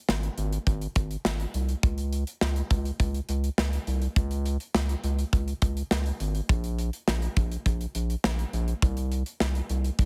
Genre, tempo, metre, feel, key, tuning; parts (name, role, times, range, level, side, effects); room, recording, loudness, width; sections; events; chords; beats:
synth-pop; 103 BPM; 4/4; straight; A4 = 442 Hz
round analog bass; bass; 0.1-10.1 s; Ab1 to Db2; -30 LUFS; equal
modern studio drum kit; drums; 0.1-10.1 s; hi-hat, kick drum, snare drum; -30 LUFS; equal
little or no reverb; heavily compressed radio sound, multiband compression; -28 LUFS; mono
0.0-10.1 A section
0.09 0.67 1.25 | 1.83 2.42 3.00 3.58 | 4.16 4.75 5.33 5.91 | 6.49 7.08 7.66 8.24 | 8.82 9.41 9.99